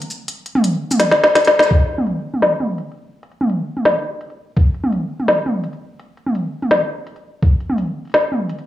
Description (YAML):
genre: drum and bass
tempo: 168 BPM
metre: 4/4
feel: half-time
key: none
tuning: none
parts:
  - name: organic electronic drum kit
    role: drums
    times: 0.0-8.7 s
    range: hi-hat, shaker, snare drum, toms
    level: -15 LUFS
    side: equal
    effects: overdrive, low-pass filter on hats, low-pass filter on toms, low-pass filter on perc, low-pass filter on snare
  - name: electronic kick drum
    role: drums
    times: 1.7-1.8, 4.6, 7.4-7.5 s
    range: none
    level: -14 LUFS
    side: equal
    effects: none
room: wet digital room reverb, RT60 1.2 s, digital ambience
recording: dry, gritty hardware recording, studio reverb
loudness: -15 LUFS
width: side -13 dB against mid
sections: 0.0-1.7 A section; 1.7-8.7 B section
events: drop 0.0-1.7; kick drops out 0.3-1.7; drum fill 1.0-1.7; band accent 1.6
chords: none